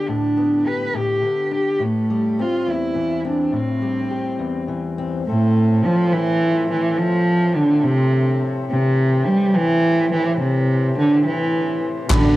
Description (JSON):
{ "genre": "indie folk with a building arrangement", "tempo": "70 BPM (dotted quarters)", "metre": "6/8", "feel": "straight", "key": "unclear", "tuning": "A4 = 443 Hz", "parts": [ { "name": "dark cello", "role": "melody", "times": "0.0-12.4 s", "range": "A2 to B4", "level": "-17 LUFS", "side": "right 1 dB", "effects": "cassette tape, analog delay" }, { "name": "fingerpicked steel-string acoustic guitar", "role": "accompaniment", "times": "0.0-5.3 s", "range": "E2 to G4", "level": "-24 LUFS", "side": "left 4 dB", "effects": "cassette tape" }, { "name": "pedal harmonium", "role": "sustained chords", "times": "5.3-12.4 s", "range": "A2 to C5", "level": "-27 LUFS", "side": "left 6 dB", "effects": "cassette tape" }, { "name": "warm trombone", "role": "second line", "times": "12.1-12.4 s", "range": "B2", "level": "-28 LUFS", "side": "left 5 dB", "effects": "cassette tape" }, { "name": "clear upright piano", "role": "accompaniment", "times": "12.1-12.4 s", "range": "A1 to D5", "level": "-33 LUFS", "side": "right 5 dB", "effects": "none" }, { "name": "picked twelve-string acoustic guitar", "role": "accompaniment", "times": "12.1-12.4 s", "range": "A2 to G4", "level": "-27 LUFS", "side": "left 6 dB", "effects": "cassette tape" }, { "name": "bluegrass banjo", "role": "arpeggios", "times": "12.1-12.4 s", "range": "B4 to D5", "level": "-26 LUFS", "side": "right 7 dB", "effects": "cassette tape" }, { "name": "upright bass", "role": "bass", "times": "12.1-12.4 s", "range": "A1", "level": "-18 LUFS", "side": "equal", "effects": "none" }, { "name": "natural country drum kit", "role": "drums", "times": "12.1-12.2 s", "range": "kick drum, ride cymbal", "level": "-18 LUFS", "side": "equal", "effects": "cassette tape" }, { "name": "group handclap", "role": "percussion", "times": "12.1-12.2 s", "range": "none", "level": "-25 LUFS", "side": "left 7 dB", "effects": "none" } ], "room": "moderate booth ambience, RT60 0.2 s", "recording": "home recording on cassette", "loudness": "-17 LUFS", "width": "side -16 dB against mid", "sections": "0.0-5.3 A section; 5.3-12.4 B section", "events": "none", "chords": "0.0 G/A; 1.8 Am7; 5.3 F/A; 8.7 C/A", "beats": "| 0.08 0.95 | 1.81 2.68 | 3.54 4.40 | 5.26 6.12 | 6.97 7.83 | 8.68 9.54 | 10.39 11.24 | 12.10" }